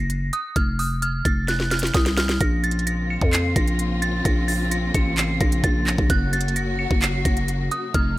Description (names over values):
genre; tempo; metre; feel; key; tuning
hip hop, trap; 130 BPM; 4/4; half-time; Bb harmonic minor; A4 = 439 Hz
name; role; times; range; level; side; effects
dark detuned synth bell; melody; 0.0-8.1 s; Eb6 to Db7; -26 LUFS; right 2 dB; chorus, low-pass filter, ping-pong delay
growling 808-style bass; bass; 0.0-8.2 s; F1 to F2; -23 LUFS; equal; none
trap drum kit; drums; 0.1-8.1 s; handclaps, hi-hat, kick drum, snare drum; -22 LUFS; equal; none
warm symphonic string section; sustained chords; 2.4-8.2 s; C3 to Gb4; -30 LUFS; left 2 dB; none
room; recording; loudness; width
little or no reverb; none; -19 LUFS; side -16 dB against mid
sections
0.0-8.2 A section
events
drum fill 1.5-2.4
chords
0.0 Gb; 0.6 F5; 2.4 Bbmadd9; 6.1 Gb